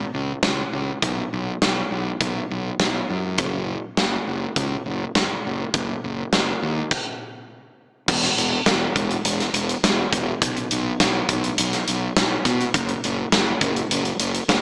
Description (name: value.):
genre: classic rock.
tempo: 102 BPM.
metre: 4/4.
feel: straight.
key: unclear.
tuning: A4 = 440 Hz.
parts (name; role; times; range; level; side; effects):
fuzz fingered electric bass; bass; 0.0-14.6 s; Fb1 to Cb3; -27 LUFS; equal; overdrive.
big rock drum kit; drums; 0.4-14.6 s; crash cymbal, hi-hat, kick drum, snare drum; -24 LUFS; equal; none.
room: light reverb.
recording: small speaker sound.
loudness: -23 LUFS.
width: mono.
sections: 0.0-8.1 A section; 8.1-14.6 B section.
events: stop 6.9-8.1.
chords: none.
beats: 0.44 | 1.03 1.61 2.21 2.79 | 3.38 3.97 4.56 5.15 | 5.74 6.33 6.91 7.50 | 8.09 8.67 9.25 9.84 | 10.42 11.00 11.58 12.16 | 12.75 13.33 13.91 14.49.